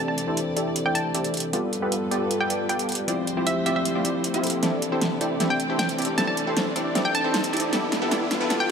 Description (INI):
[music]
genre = future bass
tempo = 155 BPM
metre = 4/4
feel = half-time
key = C major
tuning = A4 = 440 Hz
[part]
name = hollow square pluck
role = melody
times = 0.0-8.7 s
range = E5 to A5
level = -28 LUFS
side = equal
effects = chorus, digital delay
[part]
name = mellow tine electric piano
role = accompaniment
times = 0.0-8.7 s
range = E3 to A4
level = -28 LUFS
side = left 2 dB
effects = tape echo
[part]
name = dark chamber string section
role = sustained chords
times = 0.0-8.7 s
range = D2 to D5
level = -36 LUFS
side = equal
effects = none
[part]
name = supersaw stab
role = riff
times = 0.0-8.7 s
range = B3 to E5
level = -27 LUFS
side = right 1 dB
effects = low-pass filter, tape echo
[part]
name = riser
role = sound effects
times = 2.5-8.7 s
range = none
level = -34 LUFS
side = right 1 dB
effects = none
[part]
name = pop drum kit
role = drums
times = 0.2-8.6 s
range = hi-hat, snare drum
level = -27 LUFS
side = right 1 dB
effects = overdrive
[sound]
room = moderate lush hall reverb, RT60 1.6 s, digital ambience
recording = high-pass filter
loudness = -22 LUFS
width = side -6 dB against mid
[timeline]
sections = 0.0-8.7 A section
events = build-up 0.0-8.7; filter sweep on supersaw synth 0.0-8.7; riser 2.5-8.7; drum fill 4.6-8.7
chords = 0.0 C69; 1.5 G9; 3.1 Dm11; 4.6 C69; 7.7 G9